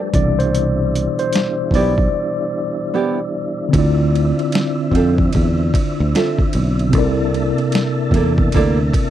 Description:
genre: R&B, neo-soul.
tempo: 75 BPM.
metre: 4/4.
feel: swing 62% on 16ths.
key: D dorian.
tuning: A4 = 441 Hz.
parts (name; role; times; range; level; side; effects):
mellow tine electric piano; accompaniment; 0.0-9.1 s; B2 to D5; -19 LUFS; left 1 dB; medium stereo tremolo.
tonewheel organ; sustained chords; 0.0-9.1 s; B2 to A5; -26 LUFS; right 1 dB; slow rotary speaker, chorus vibrato.
fretless electric bass; bass; 0.1-8.9 s; B1 to F2; -18 LUFS; equal; none.
boom bap sampler-style drum kit; drums; 0.1-9.1 s; hi-hat, kick drum, ride cymbal, snare drum; -18 LUFS; equal; overdrive.
nylon-string guitar; second line; 1.7-8.8 s; Bb3 to E5; -19 LUFS; right 6 dB; none.
room: little or no reverb.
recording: dry, close 1970s-style studio recording.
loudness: -15 LUFS.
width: side -11 dB against mid.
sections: 0.0-3.7 A section; 3.7-9.1 A section.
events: tine electric piano solo 0.0-3.7; break 2.1-3.7.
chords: 0.1 Cmaj9; 3.7 Dm9; 6.9 C13.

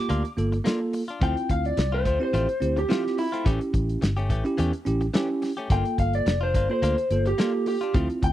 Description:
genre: straight-eighth soul blues.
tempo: 107 BPM.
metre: 4/4.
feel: swing 54% on 16ths.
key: unclear.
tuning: A4 = 440 Hz.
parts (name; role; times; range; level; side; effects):
electric guitar through a small old amp; melody; 0.0-8.3 s; E4 to D6; -26 LUFS; equal; none.
bell-like tine electric piano; accompaniment; 0.0-8.3 s; Bb3 to A4; -28 LUFS; right 2 dB; none.
direct-recorded clean electric guitar; stabs; 0.1-8.3 s; E3 to G4; -34 LUFS; left 3 dB; none.
vintage muted fingered electric bass; bass; 0.1-8.3 s; F1 to E2; -26 LUFS; equal; none.
warm soul drum kit; drums; 0.1-8.3 s; hi-hat, kick drum, snare drum; -26 LUFS; equal; none.
room: little or no reverb.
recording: dry, close 1970s-style studio recording.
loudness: -22 LUFS.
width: side -13 dB against mid.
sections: 0.0-8.3 A section.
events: none.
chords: 0.0 Gm7; 1.2 Dm7; 3.5 A7; 5.7 Gm7.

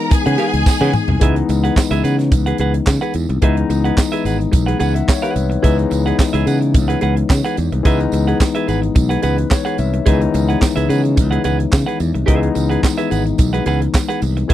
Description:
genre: disco.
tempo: 108 BPM.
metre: 4/4.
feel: straight.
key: C# minor.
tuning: A4 = 440 Hz.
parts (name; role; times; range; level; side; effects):
clear symphonic string section; second line; 0.0-1.2 s; G#4 to G#5; -22 LUFS; left 1 dB; none.
barky tine electric piano; accompaniment; 0.0-14.5 s; D#3 to F#5; -20 LUFS; left 7 dB; overdrive.
clean electric guitar; accompaniment; 0.0-14.5 s; G#4 to F#5; -22 LUFS; right 5 dB; none.
modern bright fingered electric bass; bass; 0.1-14.5 s; G#1 to C#3; -17 LUFS; right 1 dB; none.
tight funk drum kit; drums; 0.1-14.5 s; handclaps, hi-hat, kick drum, snare drum, toms; -15 LUFS; right 1 dB; none.
tambourine; percussion; 0.1-14.4 s; none; -34 LUFS; right 14 dB; none.
room: little or no reverb.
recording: dry, close 1970s-style studio recording.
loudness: -14 LUFS.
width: side -13 dB against mid.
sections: 0.0-1.2 A section; 1.2-14.5 B section.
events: drum fill 0.7-1.2; tine electric piano fill 4.5-5.6, 9.0-10.1.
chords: 0.0 C#m7.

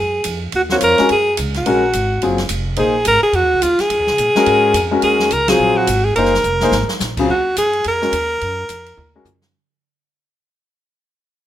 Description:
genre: modal jazz.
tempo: 213 BPM.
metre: 4/4.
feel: swing 61% on 8ths.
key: Eb dorian.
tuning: A4 = 440 Hz.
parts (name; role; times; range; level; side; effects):
clear alto saxophone; melody; 0.0-9.2 s; F4 to Bb4; -15 LUFS; equal; none.
upright bass; bass; 0.0-9.5 s; F1 to Bb2; -24 LUFS; right 1 dB; none.
open jazz drum kit; drums; 0.2-9.5 s; crash cymbal, hi-hat, kick drum, ride cymbal, snare drum, toms; -25 LUFS; right 1 dB; none.
warm concert grand piano; accompaniment; 0.7-9.2 s; Db3 to Db5; -18 LUFS; left 3 dB; none.
room: light reverb.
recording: rough home demo mix.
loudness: -13 LUFS.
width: side -12 dB against mid.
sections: 0.0-7.3 A section; 7.3-9.5 B section.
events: band accent 5.5; drum fill 6.4-7.0, 9.0-9.5; fade-out 7.3-9.5.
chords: 0.0 Ebm11; 7.3 Ebmadd9.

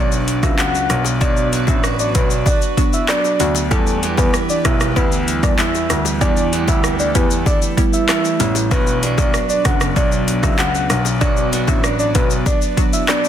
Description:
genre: dancehall.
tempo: 96 BPM.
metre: 4/4.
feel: straight.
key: B minor.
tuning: A4 = 440 Hz.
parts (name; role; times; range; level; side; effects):
soft octave-layered synth lead; melody; 0.0-13.3 s; A4 to F#5; -22 LUFS; equal; chorus, tape echo.
glassy wavetable pluck; accompaniment; 0.0-12.9 s; F#3 to G4; -24 LUFS; right 1 dB; chorus.
airy breathy pad; sustained chords; 0.0-13.3 s; E3 to D4; -26 LUFS; left 1 dB; chorus, sidechain pumping.
picked swing-style acoustic guitar; arpeggios; 0.0-13.3 s; B2 to B4; -25 LUFS; right 7 dB; tape echo.
warm baby grand piano; bass; 0.0-12.4 s; F#1 to E2; -21 LUFS; left 1 dB; none.
afro-pop drum kit; drums; 0.1-13.3 s; handclaps, hi-hat, kick drum, rim click, shaker; -18 LUFS; equal; overdrive.
bongos; percussion; 0.6-13.3 s; none; -30 LUFS; left 8 dB; none.
room: little or no reverb.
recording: dense, heavily limited modern master.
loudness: -14 LUFS.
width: side -10 dB against mid.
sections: 0.0-13.3 A section.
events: none.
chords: 0.0 Bm; 3.7 Em; 8.7 Bm.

